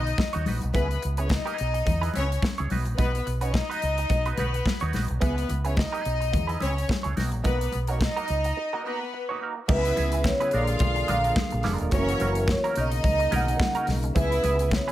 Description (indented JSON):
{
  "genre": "disco",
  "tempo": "107 BPM",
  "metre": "4/4",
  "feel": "swing 56% on 16ths",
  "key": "C# dorian",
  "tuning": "A4 = 440 Hz",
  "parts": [
    { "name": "clear studio string section", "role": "second line", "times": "0.0-14.7 s", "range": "B3 to E#5", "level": "-30 LUFS", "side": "left 2 dB", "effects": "none" },
    { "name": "semi-hollow electric guitar", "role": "accompaniment", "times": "0.0-14.9 s", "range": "F#3 to C#5", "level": "-33 LUFS", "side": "right 6 dB", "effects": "wah, spring reverb" },
    { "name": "fingered electric bass with an envelope filter", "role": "bass", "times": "0.0-14.8 s", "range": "D#1 to E2", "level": "-27 LUFS", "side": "equal", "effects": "none" },
    { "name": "modern studio drum kit", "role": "drums", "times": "0.1-14.9 s", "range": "crash cymbal, hi-hat, kick drum, snare drum", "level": "-28 LUFS", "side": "equal", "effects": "none" },
    { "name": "congas", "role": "percussion", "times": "0.2-14.9 s", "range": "none", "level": "-33 LUFS", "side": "left 3 dB", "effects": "none" },
    { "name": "vibraphone with soft mallets", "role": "melody", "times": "9.7-14.9 s", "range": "A#4 to F#5", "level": "-27 LUFS", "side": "right 1 dB", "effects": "none" },
    { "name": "tonewheel organ", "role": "sustained chords", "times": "9.7-14.9 s", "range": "C#3 to G#4", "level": "-33 LUFS", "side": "equal", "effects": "slow rotary speaker" }
  ],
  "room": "light reverb, small room ambience",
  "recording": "none",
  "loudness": "-23 LUFS",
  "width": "side -14 dB against mid",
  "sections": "0.0-9.7 A section; 9.7-14.9 B section",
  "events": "break 8.6-9.7",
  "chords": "0.0 B; 0.7 C#m7; 2.7 B; 5.2 C#m7; 7.2 Bmaj7; 9.7 C#m7; 10.5 A#7; 11.9 F#7; 12.8 Bmaj9; 14.2 C#m7",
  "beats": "0.18 | 0.74 1.30 1.86 2.42 | 2.98 3.54 4.10 4.66 | 5.21 5.77 6.33 6.89 | 7.45 8.01 8.57 9.13 | 9.69 10.25 10.81 11.37 | 11.92 12.48 13.04 13.60 | 14.16 14.72"
}